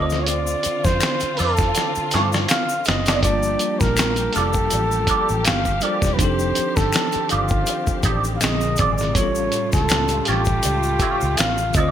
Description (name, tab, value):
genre	R&B, neo-soul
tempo	81 BPM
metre	4/4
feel	swing 54% on 16ths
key	unclear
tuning	A4 = 440 Hz
part	trumpet with bucket mute	melody	0.0-11.9 s	F4 to F5	-23 LUFS	right 1 dB	none
part	electric guitar through a small old amp	second line	0.0-11.9 s	Bb3 to D5	-27 LUFS	right 4 dB	wah, ensemble chorus, ping-pong delay
part	bell-like tine electric piano	accompaniment	0.0-11.9 s	A2 to A5	-27 LUFS	left 1 dB	fast stereo tremolo
part	dark studio string section	sustained chords	0.0-11.9 s	C3 to G4	-30 LUFS	left 2 dB	none
part	vintage muted fingered electric bass	bass	0.0-11.9 s	E1 to G2	-24 LUFS	equal	none
part	dusty soul sampler-style drum kit	drums	0.1-11.9 s	hi-hat, kick drum, snare drum	-22 LUFS	equal	gated reverb
part	tube shaker and finger snaps	percussion	0.1-11.9 s	none	-30 LUFS	left 7 dB	none
room	light reverb, small room reverb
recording	bright 1980s-style digital production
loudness	-17 LUFS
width	side -10 dB against mid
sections	0.0-11.9 A section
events	drum fill 1.7-3.2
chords	0.0 Dm7; 3.2 Gm9; 6.2 F13; 8.4 Bb9; 9.2 A7b13